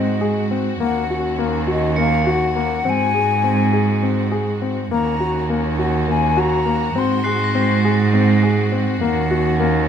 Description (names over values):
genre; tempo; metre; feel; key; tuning
contemporary instrumental, chamber music in an uneven meter; 204 BPM (eighths); 7/8; straight; unclear; A4 = 440 Hz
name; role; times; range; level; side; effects
breathy mellow jazz flute; melody; 0.0-9.9 s; Eb5 to C6; -23 LUFS; left 4 dB; none
rich studio string section; sustained chords; 0.0-9.9 s; Eb3 to Gb4; -26 LUFS; equal; none
warm concert grand piano; arpeggios; 0.0-9.8 s; Bb3 to Ab4; -21 LUFS; left 5 dB; none
rich cello; bass; 0.0-9.9 s; Eb2 to Ab2; -19 LUFS; right 4 dB; none
crotales; texture; 2.0-3.1, 7.2-9.6 s; Gb6 to Db7; -28 LUFS; equal; none
room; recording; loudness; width
light reverb; close, detailed microphones; -16 LUFS; side -8 dB against mid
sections
0.0-9.9 A section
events
none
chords
0.0 Ab7; 0.8 Ebm7; 2.8 Ab7; 4.9 Ebm7; 7.0 Ab7; 9.0 Ebm7